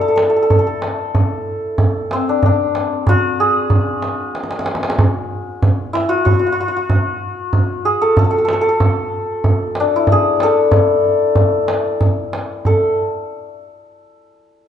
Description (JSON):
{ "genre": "Persian modal ensemble", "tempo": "94 BPM", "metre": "3/4", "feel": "straight", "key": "A avaz esfahan", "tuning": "A4 = 441 Hz", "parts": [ { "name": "santur", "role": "melody", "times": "0.0-13.5 s", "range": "C4 to A4", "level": "-16 LUFS", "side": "left 2 dB", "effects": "none" }, { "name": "tombak", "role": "percussion", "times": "0.2-13.0 s", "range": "none", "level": "-17 LUFS", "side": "right 1 dB", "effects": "none" } ], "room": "moderate recital hall reverb, RT60 1.4 s", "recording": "dark, warm production, nothing above 10.4 kHz", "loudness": "-14 LUFS", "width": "side -9 dB against mid", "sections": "0.0-12.7 A section; 12.7-14.6 B section", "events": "drum fill 4.3-5.0", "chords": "none" }